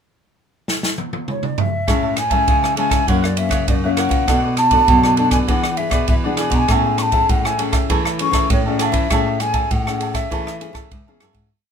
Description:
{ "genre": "samba and choro", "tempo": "100 BPM", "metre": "4/4", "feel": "straight", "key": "A major", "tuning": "A4 = 443 Hz", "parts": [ { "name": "open jazz drum kit", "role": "drums", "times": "0.7-11.5 s", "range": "kick drum, ride cymbal, rim click, snare drum, toms", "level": "-20 LUFS", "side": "right 1 dB", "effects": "none" }, { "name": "breathy mellow wooden flute", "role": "melody", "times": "1.3-11.2 s", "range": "C#5 to C#6", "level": "-20 LUFS", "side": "equal", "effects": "none" }, { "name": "cavaquinho", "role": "accompaniment", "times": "1.9-11.5 s", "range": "D4 to A5", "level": "-26 LUFS", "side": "right 6 dB", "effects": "none" }, { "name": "nylon-string guitar", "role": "accompaniment", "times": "1.9-11.5 s", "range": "F#2 to G#4", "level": "-23 LUFS", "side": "left 6 dB", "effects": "none" }, { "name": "nylon-string guitar", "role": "bass", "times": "1.9-11.5 s", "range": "C#2 to E3", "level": "-22 LUFS", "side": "equal", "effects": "none" } ], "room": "light reverb", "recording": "minimal, uncompressed stereo recording", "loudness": "-15 LUFS", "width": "side -7 dB against mid", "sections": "0.0-1.9 pickup bar; 1.9-11.5 A section", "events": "drum fill 0.7-1.9; fade-out 9.1-11.5", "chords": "0.0 N.C.; 1.9 Amaj7; 3.1 F#7; 4.3 Bm7; 5.5 E7; 6.7 Amaj7", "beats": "0.08 0.68 1.28 | 1.88 2.48 3.08 3.68 | 4.28 4.89 5.49 6.09 | 6.69 7.30 7.90 8.51 | 9.11 9.71 10.32 10.92" }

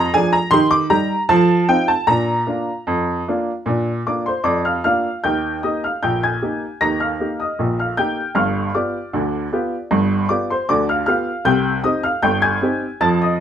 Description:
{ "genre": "ragtime piano", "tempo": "77 BPM", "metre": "2/4", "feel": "straight", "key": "Bb major, Eb major from 5.2 s", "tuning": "A4 = 440 Hz", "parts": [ { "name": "clear upright piano", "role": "solo", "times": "0.0-13.4 s", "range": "G1 to Bb6", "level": "-16 LUFS", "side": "equal", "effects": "none" } ], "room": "light reverb", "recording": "minimal, uncompressed stereo recording", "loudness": "-16 LUFS", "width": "side -9 dB against mid", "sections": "0.0-5.2 A section; 5.2-13.4 B section", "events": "none", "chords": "0.0 Bb7; 0.5 Eb; 1.3 F7; 2.1 Bb; 5.2 Eb; 8.3 G7; 11.4 Cm", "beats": "| 0.51 1.29 | 2.08 2.87 | 3.66 4.45 | 5.24 6.02 | 6.80 7.58 | 8.35 9.13 | 9.90 10.68 | 11.45 12.23 | 13.00" }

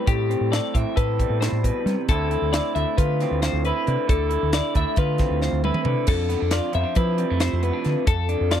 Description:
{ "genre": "math rock and midwest emo", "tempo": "270 BPM (eighths)", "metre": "9/8", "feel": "straight", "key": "unclear", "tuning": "A4 = 440 Hz", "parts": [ { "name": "electric guitar through a small old amp", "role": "accompaniment", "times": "0.0-8.6 s", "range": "E2 to A4", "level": "-26 LUFS", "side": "right 8 dB", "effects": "none" }, { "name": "twelve-string electric guitar", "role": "arpeggios", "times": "0.0-8.6 s", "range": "G4 to E5", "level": "-26 LUFS", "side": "left 12 dB", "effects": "none" }, { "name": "growling fingered electric bass", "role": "bass", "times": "0.1-8.6 s", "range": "D2 to G3", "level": "-24 LUFS", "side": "equal", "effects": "overdrive" }, { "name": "crisp fusion drum kit", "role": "drums", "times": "0.1-8.6 s", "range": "crash cymbal, hi-hat, kick drum, snare drum, toms", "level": "-23 LUFS", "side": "equal", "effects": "none" } ], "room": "little or no reverb", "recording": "dry, close 1970s-style studio recording", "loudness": "-20 LUFS", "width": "side -10 dB against mid", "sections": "0.0-8.6 A section", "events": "drum fill 5.4-6.1", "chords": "0.0 Am7; 2.1 Dm9; 6.1 F6", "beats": "| 0.07 0.29 0.52 0.74 0.96 1.19 1.41 1.63 1.85 | 2.08 2.30 2.52 2.74 2.96 3.19 3.41 3.63 3.85 | 4.08 4.30 4.52 4.74 4.96 5.19 5.41 5.63 5.85 | 6.08 6.30 6.52 6.74 6.96 7.18 7.41 7.63 7.85 | 8.07 8.29 8.52" }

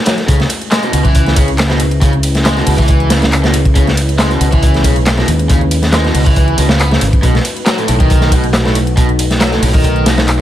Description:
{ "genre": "breakbeat, breaks", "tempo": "138 BPM", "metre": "4/4", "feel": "swing 53% on 16ths", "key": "C# minor", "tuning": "A4 = 440 Hz", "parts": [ { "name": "dark analog pad", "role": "sustained chords", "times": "0.0-10.4 s", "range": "G#3 to B4", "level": "-20 LUFS", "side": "left 1 dB", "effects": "chorus, vintage 12-bit sampler grit, sidechain pumping" }, { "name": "raw garage guitar", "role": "riff", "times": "0.1-10.2 s", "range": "A2 to B3", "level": "-17 LUFS", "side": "equal", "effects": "overdrive, spring reverb, digital delay" }, { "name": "crunchy breakbeat drum kit", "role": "drums", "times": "0.1-10.4 s", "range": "hi-hat, kick drum, snare drum", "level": "-13 LUFS", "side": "equal", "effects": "none" }, { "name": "house drum kit", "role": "drums", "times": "0.1-10.4 s", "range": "handclaps, hi-hat, ride cymbal", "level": "-21 LUFS", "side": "equal", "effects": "none" }, { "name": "fingered electric bass", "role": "bass", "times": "0.3-10.4 s", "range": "G#1 to D#2", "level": "-14 LUFS", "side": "equal", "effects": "none" } ], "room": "studio ambience", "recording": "none", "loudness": "-9 LUFS", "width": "side -12 dB against mid", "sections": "0.3-10.4 A section", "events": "break 0.0; drop 0.3-10.4", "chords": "0.3 C#m7; 7.2 B7", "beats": "| 0.28 0.71 1.15 1.58 | 2.02 2.45 2.88 3.32 | 3.75 4.19 4.62 5.06 | 5.49 5.93 6.36 6.80 | 7.23 7.67 8.10 8.54 | 8.97 9.41 9.84 10.28" }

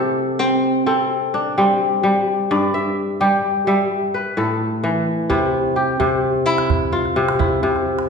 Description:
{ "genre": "west african traditional, West African string and xylophone music", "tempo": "86 BPM (dotted quarters)", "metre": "12/8", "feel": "straight", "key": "C major", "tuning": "A4 = 443 Hz", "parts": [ { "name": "kora", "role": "arpeggios", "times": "0.0-8.1 s", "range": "G2 to E5", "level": "-16 LUFS", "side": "left 1 dB", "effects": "none" }, { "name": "calabash", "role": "percussion", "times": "5.3-8.1 s", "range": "none", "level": "-25 LUFS", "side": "right 4 dB", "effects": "none" } ], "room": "wet recital hall reverb, RT60 1.7 s", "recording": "recorded in a church or concert hall", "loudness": "-16 LUFS", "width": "side -5 dB against mid", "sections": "0.0-5.3 A section; 5.3-8.1 B section", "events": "none", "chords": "0.0 C5; 2.5 G5; 3.9 A5; 5.3 C", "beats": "0.39 1.09 1.79 | 2.50 3.20 3.90 4.60 | 5.30 6.00 6.69 7.39" }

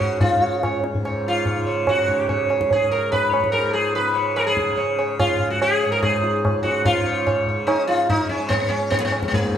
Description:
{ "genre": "indian classical, Hindustani", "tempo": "145 BPM", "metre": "4/4", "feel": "straight", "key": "Db raga khamaj", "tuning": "A4 = 440 Hz", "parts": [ { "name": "sitar", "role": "melody", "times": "0.0-9.6 s", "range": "Bb3 to Db5", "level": "-20 LUFS", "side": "equal", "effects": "none" }, { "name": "tanpura", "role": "drone", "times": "0.0-9.6 s", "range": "Db2 to Db3", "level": "-28 LUFS", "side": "left 1 dB", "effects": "none" }, { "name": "tabla", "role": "percussion", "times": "0.0-9.5 s", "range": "none", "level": "-23 LUFS", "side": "right 1 dB", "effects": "none" } ], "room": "wet large studio reverb, RT60 1.2 s", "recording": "band playing live in one room", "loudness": "-18 LUFS", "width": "side -9 dB against mid", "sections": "0.0-6.9 A section; 6.9-9.6 B section", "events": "none", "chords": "none", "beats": "| 0.21 0.62 1.04 1.46 | 1.88 2.29 2.71 3.12 | 3.54 3.96 4.37 4.79 | 5.20 5.62 6.03 6.44 | 6.86 7.27 7.68 8.10 | 8.51 8.92 9.33" }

